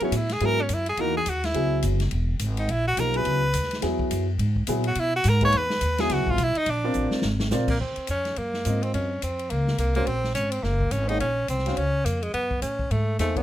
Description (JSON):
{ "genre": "modal jazz", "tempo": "211 BPM", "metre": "4/4", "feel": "swing 60% on 8ths", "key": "C# dorian, Eb dorian from 7.8 s", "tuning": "A4 = 442 Hz", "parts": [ { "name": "breathy tenor saxophone", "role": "melody", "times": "0.0-13.4 s", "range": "Ab3 to C#5", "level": "-26 LUFS", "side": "equal", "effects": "none" }, { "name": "warm upright piano", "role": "accompaniment", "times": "0.0-13.4 s", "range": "E3 to F5", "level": "-28 LUFS", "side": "left 1 dB", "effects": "none" }, { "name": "upright bass", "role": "bass", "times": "0.0-13.4 s", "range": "E1 to B2", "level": "-26 LUFS", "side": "equal", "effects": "none" }, { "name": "swinging big-band drum kit", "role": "drums", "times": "0.0-13.4 s", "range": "crash cymbal, hi-hat, kick drum, ride cymbal, snare drum", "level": "-33 LUFS", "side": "left 1 dB", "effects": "none" } ], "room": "light reverb", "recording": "close, detailed microphones", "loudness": "-22 LUFS", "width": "side -12 dB against mid", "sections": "0.0-7.8 A section; 7.8-13.4 B section", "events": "tenor saxophone solo 0.0-7.8; drum fill 6.9-7.5", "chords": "0.0 C#m9 (rootless); 6.7 A#7; 7.8 Ebm9; 12.3 Gbm9" }